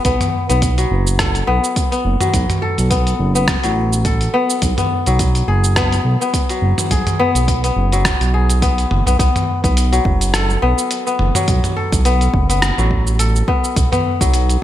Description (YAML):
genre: organic downtempo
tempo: 105 BPM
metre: 4/4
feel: swing 56% on 16ths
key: unclear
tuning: A4 = 443 Hz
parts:
  - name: kora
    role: arpeggios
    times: 0.0-14.6 s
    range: F#3 to A4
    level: -19 LUFS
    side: left 3 dB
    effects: ping-pong delay
  - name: dusty soul sampler-style drum kit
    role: drums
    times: 0.0-14.6 s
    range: cabasa, hi-hat, rim click, toms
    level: -21 LUFS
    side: right 1 dB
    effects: gated reverb
  - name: smooth synth bass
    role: bass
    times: 0.1-14.6 s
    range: F#1 to B1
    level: -16 LUFS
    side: right 1 dB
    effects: sidechain pumping
  - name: electronic kick drum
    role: drums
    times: 0.1-14.3 s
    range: none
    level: -19 LUFS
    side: right 1 dB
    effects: none
room: light reverb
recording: bright 1980s-style digital production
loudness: -14 LUFS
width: side -12 dB against mid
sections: 0.0-9.2 A section; 9.2-14.6 B section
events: none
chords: 0.1 B5; 13.8 F#sus4